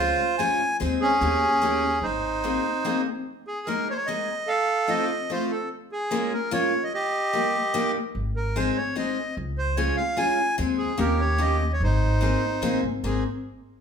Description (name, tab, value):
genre	musette waltz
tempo	147 BPM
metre	3/4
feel	straight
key	Ab major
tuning	A4 = 440 Hz
part	accordion	melody	0.0-13.2 s	Db4 to Ab5	-24 LUFS	right 1 dB	none
part	picked steel-string acoustic guitar	accompaniment	0.0-13.2 s	G3 to Ab4	-27 LUFS	left 2 dB	none
part	upright bass	bass	0.0-2.6, 8.1-13.2 s	Ab1 to Eb2	-27 LUFS	equal	none
room	moderate large studio reverb, RT60 1.2 s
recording	band playing live in one room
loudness	-22 LUFS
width	side -7 dB against mid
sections	0.0-3.3 A section; 3.3-13.0 A section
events	none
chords	0.0 Db; 0.8 Ab/Eb; 1.2 Eb7; 2.0 Abadd9; 3.3 Absus2; 4.5 F7; 5.7 Bbm7; 6.9 Eb; 8.2 Ab; 9.4 Db; 10.6 Ab/Eb; 11.0 Eb7; 11.8 Abadd9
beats	0.40 | 0.81 1.22 1.62 | 2.02 2.43 2.85 | 3.26 3.67 4.08 | 4.49 4.89 5.30 | 5.70 6.11 6.51 | 6.92 7.33 7.74 | 8.15 8.56 8.97 | 9.38 9.78 10.18 | 10.59 10.99 11.40 | 11.81 12.21 12.63 | 13.04